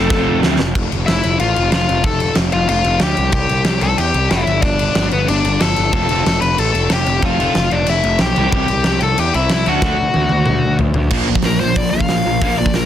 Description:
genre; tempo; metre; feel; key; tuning
punk rock; 185 BPM; 4/4; straight; unclear; A4 = 440 Hz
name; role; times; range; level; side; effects
dark smooth lead guitar; melody; 0.0-12.9 s; B3 to B5; -18 LUFS; left 3 dB; overdrive
distorted electric guitar; riff; 0.0-0.6, 5.9-12.9 s; F2 to A4; -19 LUFS; right 2 dB; distortion
fuzz picked electric bass; bass; 0.0-12.9 s; F1 to E2; -19 LUFS; right 1 dB; overdrive
big rock drum kit; drums; 0.1-12.8 s; crash cymbal, hi-hat, kick drum, snare drum, toms; -18 LUFS; equal; none
room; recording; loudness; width
little or no reverb; dense, heavily limited modern master; -13 LUFS; side -10 dB against mid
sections
0.7-11.1 A section; 11.1-12.9 B section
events
drum fill 0.0-0.7, 9.8-11.1; lead electric guitar solo 11.1-12.9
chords
0.0 F; 3.2 C; 4.5 G; 5.9 F; 8.4 C; 9.7 D; 11.1 Bb5

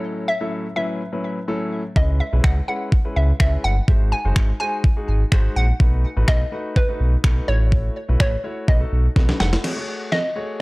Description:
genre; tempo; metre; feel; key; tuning
dance-pop; 125 BPM; 4/4; straight; unclear; A4 = 440 Hz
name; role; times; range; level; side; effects
hollow square pluck; melody; 0.0-10.6 s; B4 to G#5; -26 LUFS; equal; chorus, tape echo
clear concert grand piano; accompaniment; 0.0-10.6 s; A2 to C#5; -29 LUFS; left 1 dB; sidechain pumping
sub bass with octave; bass; 2.0-9.6 s; E#1 to C#2; -18 LUFS; equal; sidechain pumping
crisp 8-bit digital drum machine; drums; 2.0-10.2 s; crash cymbal, finger snaps, kick drum, snare drum; -18 LUFS; equal; none
room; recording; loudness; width
little or no reverb; dry, gritty hardware recording; -17 LUFS; side -24 dB against mid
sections
0.0-9.6 A section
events
drum fill 9.2-9.6, 9.6-10.6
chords
0.0 F#m7/A; 2.0 C#m7; 3.9 G#7; 5.8 B7; 7.5 F#m7/A; 8.7 B7; 9.6 F#madd9

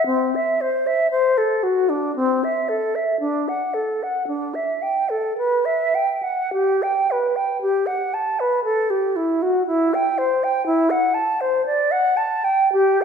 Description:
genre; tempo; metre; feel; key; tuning
classical, baroque-style fantasia for unaccompanied flute; 51-61 BPM; 3/4; rubato; unclear; A4 = 439 Hz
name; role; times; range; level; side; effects
concert flute; solo; 0.0-13.0 s; C4 to A5; -18 LUFS; equal; none
room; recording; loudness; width
wet recital hall reverb, RT60 1.4 s; heard from further back in the room; -18 LUFS; side -6 dB against mid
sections
0.0-13.0 A section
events
none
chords
none

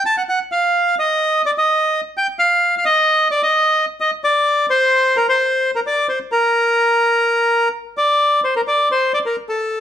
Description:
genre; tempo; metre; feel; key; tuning
tango; 129 BPM; 4/4; rubato; unclear; A4 = 440 Hz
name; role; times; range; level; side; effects
bandoneon; solo; 0.0-9.8 s; A4 to A5; -14 LUFS; equal; none
room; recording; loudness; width
light reverb; faint mains hum; -14 LUFS; side -10 dB against mid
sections
0.0-8.2 A section; 8.2-9.8 B section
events
none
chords
none

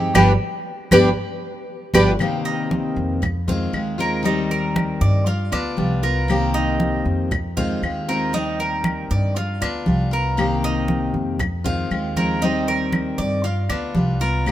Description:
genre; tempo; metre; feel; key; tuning
latin, Cuban son and guajira; 117 BPM; 4/4; straight; C minor; A4 = 440 Hz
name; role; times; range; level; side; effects
picked steel-string acoustic guitar; accompaniment; 0.0-14.5 s; C3 to Ab4; -24 LUFS; left 3 dB; none
Cuban tres; arpeggios; 0.0-14.5 s; D4 to F5; -24 LUFS; right 2 dB; none
upright bass; bass; 0.0-14.5 s; G1 to G2; -23 LUFS; equal; none
nylon-string guitar; melody; 0.1-2.1 s; G4 to D5; -22 LUFS; equal; none
congas; percussion; 0.1-14.5 s; none; -25 LUFS; right 1 dB; none
claves; percussion; 0.2-14.5 s; none; -27 LUFS; left 3 dB; none
room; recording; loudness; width
light reverb; minimal, uncompressed stereo recording; -18 LUFS; side -12 dB against mid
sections
0.0-2.2 A section; 2.2-14.5 B section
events
band accent 0.2-2.2; drum fill 1.2-2.2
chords
0.2 G; 2.2 Cm7; 3.2 Fm7; 4.2 Eb6; 5.3 G7; 6.3 Cm7; 7.3 Fm7; 8.3 Eb6; 9.4 G7; 10.4 Cm7; 11.4 Fm7; 12.4 Eb6; 13.4 G7

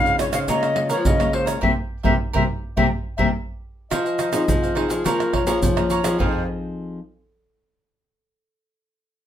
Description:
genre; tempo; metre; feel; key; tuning
samba and choro; 105 BPM; 4/4; straight; F minor; A4 = 440 Hz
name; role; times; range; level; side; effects
breathy concert flute; melody; 0.0-3.3 s; C5 to F5; -22 LUFS; left 3 dB; none
cavaquinho; accompaniment; 0.0-6.4 s; Eb4 to Bb5; -28 LUFS; right 5 dB; none
nylon-string guitar; accompaniment; 0.0-7.0 s; Ab2 to Ab4; -26 LUFS; left 4 dB; none
nylon-string guitar; bass; 0.0-6.5 s; F2 to F3; -25 LUFS; equal; none
tube shaker, pandeiro, tamborim and surdo; percussion; 0.1-6.3 s; none; -23 LUFS; right 1 dB; none
mellow clarinet; second line; 3.9-6.5 s; Ab4 to Eb5; -27 LUFS; left 6 dB; none
room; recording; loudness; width
moderate studio reverb, RT60 0.5 s; minimal, uncompressed stereo recording; -19 LUFS; side -10 dB against mid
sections
0.0-3.9 A section; 3.9-6.2 B section; 6.2-8.5 C section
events
band accent 1.6-3.9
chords
0.5 Bbm7/Db; 1.6 C7; 3.9 Fm7; 5.0 Bbm7/F; 6.2 Fm7

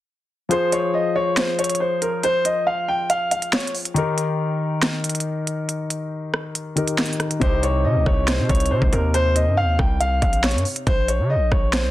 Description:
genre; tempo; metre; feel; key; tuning
hip hop, drill; 139 BPM; 4/4; half-time; F minor; A4 = 440 Hz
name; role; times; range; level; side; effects
dark concert grand piano; melody; 0.5-3.7, 7.4-11.9 s; Bb4 to G5; -21 LUFS; equal; none
dark baby grand piano; accompaniment; 0.5-10.9 s; C3 to C5; -25 LUFS; left 3 dB; none
drill drum kit; drums; 0.5-11.8 s; finger snaps, hi-hat, kick drum, rim click, snare drum; -22 LUFS; equal; vintage 12-bit sampler grit
distorted 808-style bass; bass; 7.4-11.9 s; Bb1 to Db3; -21 LUFS; equal; distortion
room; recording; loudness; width
light reverb, small room ambience; dense, heavily limited modern master; -18 LUFS; side -15 dB against mid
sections
0.0-11.9 A section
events
break 0.0-0.5, 4.0-7.4; kick muted 0.5-7.4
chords
0.0 N.C.; 0.5 Fm; 4.0 Eb; 7.4 Cm; 10.9 Bbm

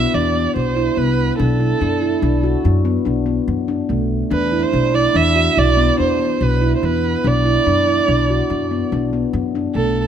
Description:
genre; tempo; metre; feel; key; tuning
contemporary instrumental, chamber music in an uneven meter; 144 BPM; 7/4; straight; B phrygian; A4 = 440 Hz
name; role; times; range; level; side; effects
warm violin; melody; 0.0-10.0 s; A4 to E5; -19 LUFS; right 4 dB; none
handpan; arpeggios; 0.0-10.0 s; A3 to F#4; -19 LUFS; left 1 dB; none
upright bass; bass; 0.0-10.1 s; B1 to F#2; -20 LUFS; left 1 dB; none
room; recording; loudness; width
light reverb; close, detailed microphones; -15 LUFS; side -8 dB against mid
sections
0.0-10.1 A section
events
none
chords
0.0 E5; 1.4 Bm7; 4.3 E5; 7.2 Bm

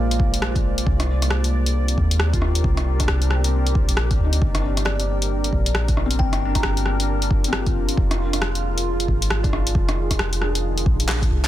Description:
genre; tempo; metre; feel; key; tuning
future garage; 135 BPM; 4/4; swing 61% on 16ths; F dorian; A4 = 438 Hz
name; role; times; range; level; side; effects
kalimba; melody; 0.0-0.2, 4.9-7.2 s; D5 to Bb5; -33 LUFS; left 2 dB; analog delay
felt-muted upright piano; accompaniment; 0.0-11.5 s; C4 to D5; -33 LUFS; left 4 dB; sidechain pumping, analog delay
deep dark ambient pad; sustained chords; 0.0-11.5 s; Eb3 to D5; -28 LUFS; right 1 dB; chorus, built-in reverb, vintage 12-bit sampler grit, sidechain pumping
soft 808-style bass; bass; 0.0-11.5 s; F1 to Eb2; -22 LUFS; equal; none
deep house drum kit; drums; 0.1-11.5 s; handclaps, hi-hat, rim click; -25 LUFS; equal; soft clipping on snare
electronic kick drum; drums; 0.2-11.3 s; none; -22 LUFS; equal; none
room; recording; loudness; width
digital ambience; dense, heavily limited modern master; -18 LUFS; side -13 dB against mid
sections
0.0-11.5 A section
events
drum fill 11.1-11.5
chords
0.0 Bb7; 0.9 Cm7; 4.4 Gm; 8.0 Fm7

